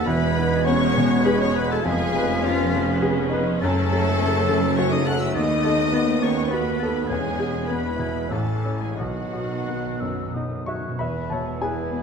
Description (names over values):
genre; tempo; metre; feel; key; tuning
classical, romantic movement for piano and orchestra; 87-105 BPM; 3/4; rubato; E major; A4 = 436 Hz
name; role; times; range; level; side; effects
bright symphonic violin section; melody; 0.0-12.0 s; G#4 to F#6; -34 LUFS; left 5 dB; none
clear concert grand piano; melody; 0.0-12.0 s; A1 to C#6; -25 LUFS; left 2 dB; none
hollow concert flute; second line; 0.0-11.0 s; D#6 to B6; -36 LUFS; left 4 dB; none
warm clarinet; second line; 0.0-12.0 s; B3 to B4; -36 LUFS; left 2 dB; none
warm oboe; second line; 0.0-12.0 s; E#4 to F#5; -34 LUFS; right 2 dB; none
warm symphonic violin section; second line; 0.0-12.0 s; B3 to F#5; -31 LUFS; left 3 dB; none
clear studio viola section; accompaniment; 0.0-12.0 s; D#3 to C#4; -32 LUFS; right 2 dB; none
dark French horn section; sustained chords; 0.0-11.2 s; E3 to F#4; -29 LUFS; left 3 dB; none
warm trombone section; sustained chords; 0.0-10.7 s; B2 to C#4; -34 LUFS; right 4 dB; none
mellow tuba; bass; 0.0-10.8 s; E1 to D#2; -31 LUFS; right 4 dB; none
rich symphonic cello section; bass; 0.0-12.0 s; D#2 to B2; -31 LUFS; right 4 dB; none
rich symphonic double bass section; bass; 0.0-12.0 s; E1 to D#2; -31 LUFS; right 3 dB; none
mellow bassoon; accompaniment; 0.1-12.0 s; G#3 to E#4; -31 LUFS; right 2 dB; none
timpani; percussion; 7.1-11.0 s; E2 to B2; -35 LUFS; equal; none
room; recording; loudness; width
moderate scoring stage reverb, RT60 1.9 s; minimal, uncompressed stereo recording; -20 LUFS; side -6 dB against mid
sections
0.0-11.0 A section; 11.0-12.0 B section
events
timpani fill 9.0-11.0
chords
0.1 E; 1.9 C#7/E#; 3.6 F#m; 5.4 B7/D#; 7.1 E; 8.3 A; 9.0 B; 11.0 E